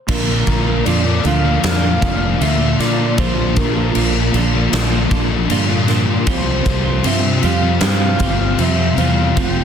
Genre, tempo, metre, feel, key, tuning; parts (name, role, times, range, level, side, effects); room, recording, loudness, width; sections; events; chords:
rock, shoegaze and dream pop; 78 BPM; 4/4; straight; A4 = 440 Hz
mellow horn-like synth lead; melody; 0.1-9.6 s; Bb4 to G5; -24 LUFS; left 1 dB; chorus, digital delay
soft string machine; sustained chords; 0.1-9.6 s; F4 to C6; -30 LUFS; right 1 dB
picked twelve-string acoustic guitar; arpeggios; 0.1-9.6 s; F3 to A4; -29 LUFS; right 2 dB
overdriven semi-hollow guitar; riff; 0.1-9.6 s; F2 to F4; -21 LUFS; right 10 dB; reverse reverb
thick fuzz guitar; riff; 0.1-9.6 s; F2 to C4; -21 LUFS; left 8 dB; distortion, wide subtle chorus
fuzz fingered electric bass; bass; 0.1-9.6 s; F1 to Bb2; -19 LUFS; equal; overdrive
huge arena drum kit; drums; 0.1-9.5 s; crash cymbal, kick drum, snare drum; -19 LUFS; left 1 dB
small room ambience; dense, heavily limited modern master; -13 LUFS; side -8 dB against mid
0.1-9.6 A section
0.1 Bbmaj7; 6.3 Csus4